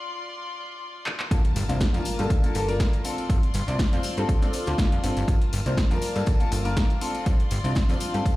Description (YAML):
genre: filtered disco house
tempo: 121 BPM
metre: 4/4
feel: swing 54% on 16ths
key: G minor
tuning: A4 = 441 Hz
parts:
  - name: rich chamber string section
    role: sustained chords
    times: 0.0-8.4 s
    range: F4 to C6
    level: -36 LUFS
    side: left 2 dB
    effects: sidechain pumping, low-pass filter
  - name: punchy analog drum machine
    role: drums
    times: 1.1-8.4 s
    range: handclaps, hi-hat, snare drum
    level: -32 LUFS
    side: equal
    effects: overdrive
  - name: warm baby grand piano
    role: accompaniment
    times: 1.3-8.4 s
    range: Bb3 to D5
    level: -29 LUFS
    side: left 2 dB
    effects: phaser, vintage 12-bit sampler grit, sidechain pumping, low-pass filter
  - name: plucky analog bass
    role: bass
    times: 1.3-8.2 s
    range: G1 to G2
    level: -27 LUFS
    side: equal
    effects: sidechain pumping, low-pass filter
  - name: electronic kick drum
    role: drums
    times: 1.3-8.4 s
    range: none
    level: -22 LUFS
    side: equal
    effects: overdrive
  - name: tambourine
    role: percussion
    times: 1.3-8.4 s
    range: none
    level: -41 LUFS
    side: left 6 dB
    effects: sidechain pumping on perc, low-pass filter on perc
  - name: impact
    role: sound effects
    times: 1.4-3.3 s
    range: none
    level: -34 LUFS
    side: equal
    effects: none
room: small room ambience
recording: played on a big sound system in a bare room, stone room reverb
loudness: -22 LUFS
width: side -18 dB against mid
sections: 0.0-1.3 A section; 1.3-8.4 B section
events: break 0.0-1.3; drum fill 1.1; drop 1.3-8.4; impact 1.3-3.3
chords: 0.0 Dm7; 1.3 Gm9; 3.0 Dm7/G; 5.3 Gm9; 7.0 Dm7/G